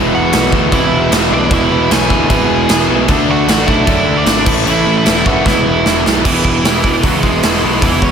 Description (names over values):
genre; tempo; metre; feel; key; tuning
punk rock; 152 BPM; 4/4; straight; E mixolydian; A4 = 440 Hz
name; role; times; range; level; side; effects
biting overdriven guitar; riff; 0.0-8.1 s; E2 to D4; -17 LUFS; left 8 dB; slapback echo
distorted electric guitar; riff; 0.0-8.1 s; A2 to G#4; -18 LUFS; right 10 dB; distortion, slapback echo
distorted electric guitar; riff; 0.0-6.2 s; E2 to D4; -19 LUFS; right 1 dB; none
fuzz picked electric bass; bass; 0.0-8.1 s; E1 to F#2; -19 LUFS; equal; overdrive
nasal lead guitar with a parked wah; melody; 0.1-8.1 s; E3 to G#5; -18 LUFS; right 3 dB; overdrive, slapback echo
big rock drum kit; drums; 0.3-8.1 s; crash cymbal, hi-hat, kick drum, snare drum; -15 LUFS; right 1 dB; none
room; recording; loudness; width
moderate lush hall reverb, RT60 1.6 s, studio ambience; big arena sound; -10 LUFS; side -7 dB against mid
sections
0.0-6.2 A section; 6.2-8.1 B section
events
drum fill 5.5-6.2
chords
0.0 E; 3.1 D; 4.5 A; 5.5 E